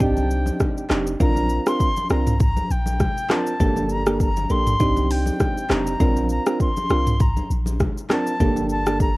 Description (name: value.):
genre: afrobeats.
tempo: 100 BPM.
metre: 4/4.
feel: swing 55% on 16ths.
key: Bb major.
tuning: A4 = 440 Hz.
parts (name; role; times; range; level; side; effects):
bright concert flute; melody; 0.0-9.2 s; G5 to C6; -26 LUFS; left 1 dB; cassette tape, analog delay.
soft electric-piano-like synth keys; accompaniment; 0.0-9.1 s; Bb3 to Bb4; -23 LUFS; right 2 dB; chorus, cassette tape.
punchy sub bass; bass; 0.0-9.2 s; F1 to C2; -24 LUFS; equal; none.
afro-pop drum kit; drums; 0.0-9.2 s; handclaps, hi-hat, kick drum, rim click, shaker, toms; -22 LUFS; equal; none.
congas; percussion; 0.2-8.7 s; none; -30 LUFS; left 1 dB; none.
room: little or no reverb.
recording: home recording on cassette.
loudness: -18 LUFS.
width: side -20 dB against mid.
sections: 0.0-9.2 A section.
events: none.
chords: 0.0 Cmadd9; 1.2 Bbadd9; 3.6 Gmadd9; 4.8 Cmadd9; 6.0 Bbadd9; 8.4 Gmadd9.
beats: 0.00 0.60 | 1.20 1.80 2.40 3.00 | 3.60 4.20 4.80 5.40 | 6.00 6.60 7.20 7.80 | 8.40 9.00.